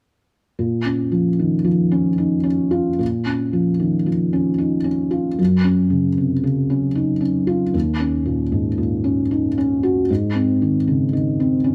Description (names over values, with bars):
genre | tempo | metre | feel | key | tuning
neoclassical minimalist piano | 76 BPM | 3/4 | rubato | Bb minor | A4 = 438 Hz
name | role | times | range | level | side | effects
felt-muted upright piano | solo | 0.6-11.7 s | Eb2 to Gb4 | -19 LUFS | equal | none
room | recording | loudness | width
light reverb | none | -19 LUFS | mono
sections
0.6-3.0 A section; 3.0-11.7 B section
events
none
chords
0.6 Bbm; 5.4 Gb5; 7.7 Eb7(no3); 10.1 Ab